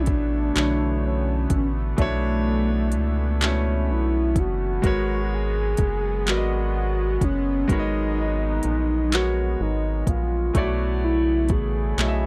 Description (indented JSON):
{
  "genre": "slow six-eight R&B",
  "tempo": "42 BPM (dotted quarters)",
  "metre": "6/8",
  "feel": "straight",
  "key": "unclear",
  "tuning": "A4 = 440 Hz",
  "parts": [
    { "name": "mellow horn-like synth lead", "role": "melody", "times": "0.0-12.3 s", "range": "A3 to G#4", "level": "-28 LUFS", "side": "equal", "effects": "chorus, slapback echo" },
    { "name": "clear concert grand piano", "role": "accompaniment", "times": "0.0-12.3 s", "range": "B2 to E5", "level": "-31 LUFS", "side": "equal", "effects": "none" },
    { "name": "chorused pulse-width pad", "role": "sustained chords", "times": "0.0-12.3 s", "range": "C#3 to B3", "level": "-37 LUFS", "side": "equal", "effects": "none" },
    { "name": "rubbery square bass", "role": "bass", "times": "0.0-12.3 s", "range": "F#1 to C#2", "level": "-27 LUFS", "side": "equal", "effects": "none" },
    { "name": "smooth R&B drum kit", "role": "drums", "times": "0.1-12.2 s", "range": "handclaps, hi-hat, kick drum", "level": "-26 LUFS", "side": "equal", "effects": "overdrive" }
  ],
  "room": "little or no reverb",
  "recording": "dry, close 1970s-style studio recording",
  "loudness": "-23 LUFS",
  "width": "mono",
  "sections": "0.0-12.3 A section",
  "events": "none",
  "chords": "0.0 Bm11; 4.8 G#m11; 10.5 Bm11"
}